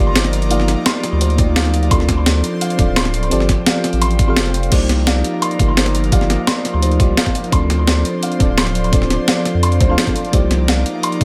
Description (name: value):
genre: liquid drum and bass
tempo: 171 BPM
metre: 4/4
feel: straight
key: C dorian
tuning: A4 = 442 Hz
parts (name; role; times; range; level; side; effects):
- mellow FM electric piano; accompaniment; 0.0-11.2 s; Bb3 to F5; -24 LUFS; equal; chorus, dub echo
- airy breathy pad; sustained chords; 0.0-11.2 s; F3 to D5; -26 LUFS; equal; chorus, sidechain pumping
- felt-muted upright piano; arpeggios; 0.0-11.2 s; A4 to C6; -27 LUFS; equal; tape echo
- saturated sub bass; bass; 0.0-11.2 s; D1 to F2; -20 LUFS; equal; none
- breakbeat sampler-style drum kit; drums; 0.2-11.2 s; crash cymbal, hi-hat, snare drum; -21 LUFS; equal; overdrive
- electronic kick drum; drums; 1.4-11.2 s; none; -19 LUFS; equal; overdrive
room: light reverb, digital ambience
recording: echo-heavy mix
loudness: -16 LUFS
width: mono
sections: 0.0-4.7 A section; 4.7-11.2 A section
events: drop 0.0-4.7, 4.7-11.2; break 4.4-4.7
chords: 0.0 Cm11; 1.9 Dm7; 3.3 G7sus4; 4.7 Cm11; 7.5 Dm7; 10.3 Cm11